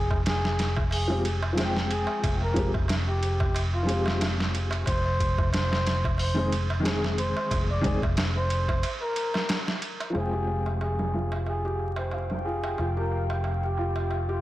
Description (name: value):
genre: trip hop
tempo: 91 BPM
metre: 4/4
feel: swing 55% on 16ths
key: F minor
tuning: A4 = 440 Hz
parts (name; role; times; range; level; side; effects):
- trumpet with bucket mute; melody; 0.0-14.4 s; F4 to D5; -32 LUFS; equal; tape echo
- fingered electric bass; bass; 0.0-14.4 s; F1; -28 LUFS; equal; transformer saturation
- boom bap sampler-style drum kit; drums; 0.1-14.3 s; hi-hat, kick drum, ride cymbal, snare drum; -29 LUFS; equal; low-pass filter on cymbals, low-pass filter on snare, low-pass filter on kick, low-pass filter on hats, low-pass filter on room
- darbuka; percussion; 0.1-14.4 s; none; -38 LUFS; right 3 dB; none
- felt-muted upright piano; accompaniment; 1.1-14.4 s; Eb3 to G5; -30 LUFS; left 1 dB; tremolo, vintage 12-bit sampler grit, tape echo
- deep dark ambient pad; sustained chords; 11.7-14.4 s; F5 to G5; -37 LUFS; equal; chorus, built-in reverb, vintage 12-bit sampler grit
- felt-muted upright piano; arpeggios; 10.1-14.4 s; F4 to F5; -34 LUFS; left 2 dB; vintage 12-bit sampler grit, low-pass filter, ping-pong delay
room: light reverb, small room ambience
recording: blown-out, overdriven recording, vinyl crackle, overdrive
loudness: -24 LUFS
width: side -15 dB against mid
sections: 0.0-10.1 A section; 10.1-14.4 B section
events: break 8.8-10.1; filter sweep on felt piano 10.1-14.4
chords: 0.0 Fmadd9; 4.9 Ab/F; 10.1 Fmadd9